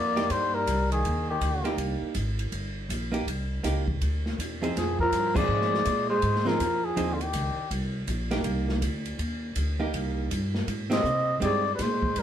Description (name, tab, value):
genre	jazz, small-group swing and bop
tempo	162 BPM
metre	4/4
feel	swing 64% on 8ths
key	C minor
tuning	A4 = 440 Hz
part	trumpet with cup mute	melody	0.0-1.8, 4.8-7.7, 10.9-12.2 s	F4 to Eb5	-27 LUFS	left 4 dB	none
part	breathy tenor saxophone	second line	0.0-1.8, 4.8-7.7, 10.9-12.2 s	D3 to C4	-30 LUFS	right 4 dB	none
part	upright bass	bass	0.0-12.2 s	G1 to C3	-30 LUFS	equal	none
part	archtop guitar, miked and amplified	accompaniment	0.2-11.6 s	F3 to Ab4	-31 LUFS	right 3 dB	none
part	open jazz drum kit	drums	0.2-12.2 s	crash cymbal, hi-hat, kick drum, ride cymbal, snare drum	-33 LUFS	equal	none
room	moderate studio reverb, RT60 0.7 s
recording	band playing live in one room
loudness	-25 LUFS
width	side -10 dB against mid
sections	0.0-12.2 A section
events	band accent 5.3, 10.9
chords	0.0 Cm7; 4.7 Fm7; 7.7 Cm7; 10.7 Abmaj7